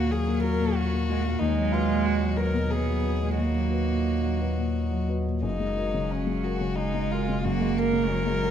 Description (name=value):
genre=neoclassical piano and strings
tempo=90 BPM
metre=3/4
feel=rubato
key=unclear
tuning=A4 = 439 Hz
part: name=warm violin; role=melody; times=0.0-8.5 s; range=Db4 to Bb4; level=-32 LUFS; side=left 4 dB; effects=none
part: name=rich cello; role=second line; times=0.0-8.5 s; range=Gb3 to B3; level=-29 LUFS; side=right 7 dB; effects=none
part: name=felt-muted upright piano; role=accompaniment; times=0.0-8.5 s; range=Eb2 to B4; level=-29 LUFS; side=left 5 dB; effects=none
part: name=pedal harmonium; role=sustained chords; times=0.0-8.5 s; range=F#3 to Ab5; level=-40 LUFS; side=right 2 dB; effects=none
part: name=warm sub bass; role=bass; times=0.0-8.5 s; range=Gb1 to Eb2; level=-29 LUFS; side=equal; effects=none
room=light reverb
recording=minimal, uncompressed stereo recording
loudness=-23 LUFS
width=side -9 dB against mid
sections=0.0-8.5 A section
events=none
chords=0.0 Ebmadd9; 1.4 Bmaj7/D#; 5.4 Gbadd9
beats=0.10 0.75 | 1.41 2.06 2.72 | 3.39 4.07 4.75 | 5.43 6.11 6.78 | 7.45 8.12